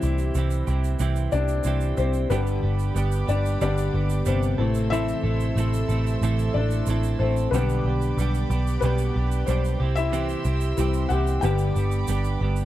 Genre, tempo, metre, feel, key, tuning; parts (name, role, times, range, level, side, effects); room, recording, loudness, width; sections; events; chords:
piano-driven pop; 92 BPM; 4/4; straight; G major; A4 = 440 Hz
felt-muted upright piano; accompaniment; 0.0-12.7 s; C3 to G5; -28 LUFS; left 6 dB
direct-recorded clean electric guitar; riff; 0.0-12.7 s; G2 to A4; -30 LUFS; right 8 dB; lush chorus
vintage muted picked electric bass; bass; 0.0-12.7 s; G1 to C2; -23 LUFS; equal
tube shaker; percussion; 0.0-12.7 s; -42 LUFS; right 17 dB
rich symphonic string section; sustained chords; 2.3-12.7 s; G4 to E6; -35 LUFS; right 2 dB
little or no reverb; dry, close 1970s-style studio recording; -21 LUFS; side -14 dB against mid
0.0-12.7 A section
felt piano solo 0.0-12.7
0.0 C; 2.3 G; 4.6 Am; 7.5 G/B; 9.8 C; 11.4 G